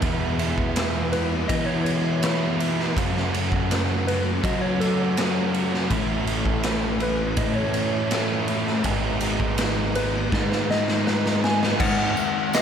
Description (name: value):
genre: rock, shoegaze and dream pop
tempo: 82 BPM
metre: 4/4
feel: straight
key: E major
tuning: A4 = 441 Hz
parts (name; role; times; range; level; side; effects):
- biting overdriven guitar; riff; 0.0-11.8 s; G#2 to F#4; -28 LUFS; right 7 dB; reverse reverb
- thick fuzz guitar; riff; 0.0-12.6 s; E2 to A3; -28 LUFS; left 10 dB; distortion, analog chorus
- growling picked electric bass; bass; 0.0-12.1 s; G#1 to F#3; -27 LUFS; equal; overdrive
- raw garage drum kit; drums; 0.0-12.6 s; crash cymbal, kick drum, ride cymbal, snare drum; -26 LUFS; equal; none
- soft struck synth lead; melody; 1.1-12.6 s; A4 to G#5; -29 LUFS; equal; chorus, diffuse ambient delay
- tambourine; percussion; 11.8-12.6 s; none; -38 LUFS; right 11 dB; none
room: moderate plate reverb, RT60 2.9 s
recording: dreamy mix soaked in reverb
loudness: -21 LUFS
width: side -8 dB against mid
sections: 0.0-11.8 A section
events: drum fill 10.3-11.8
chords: 0.0 E6; 3.0 F#m; 5.9 A; 8.9 G#m; 11.8 G#5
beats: | 0.03 0.76 1.49 2.23 | 2.96 3.70 4.43 5.17 | 5.91 6.64 7.38 8.12 | 8.85 9.59 10.33 11.06 | 11.80 12.54